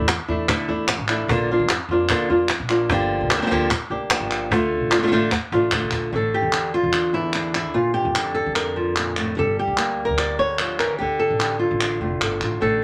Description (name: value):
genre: flamenco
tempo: 148 BPM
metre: 4/4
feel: straight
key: unclear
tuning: A4 = 440 Hz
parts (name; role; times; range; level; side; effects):
- flamenco guitar; melody; 0.0-12.8 s; E2 to D5; -23 LUFS; equal; none
- upright bass; bass; 0.0-12.8 s; F1 to F2; -32 LUFS; equal; none
- cajon; percussion; 0.1-6.0 s; none; -27 LUFS; equal; none
- palmas hand claps; percussion; 0.1-12.6 s; none; -27 LUFS; equal; none
room: moderate studio ambience, RT60 0.5 s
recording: none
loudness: -21 LUFS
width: mono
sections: 0.0-6.1 A section; 6.1-12.8 B section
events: drum fill 5.5-6.1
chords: 0.0 Asus4; 1.3 Bb; 2.9 Gm7; 4.5 Dm; 6.1 Asus4; 7.8 Bb; 9.4 Gm; 11.0 Dm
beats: 0.08 0.49 0.89 | 1.29 1.69 2.10 2.50 | 2.90 3.31 3.71 4.11 | 4.51 4.92 5.32 5.73 | 6.13 6.54 6.94 7.35 | 7.75 8.16 8.56 8.97 | 9.38 9.78 10.19 10.59 | 11.00 11.40 11.81 12.21 | 12.62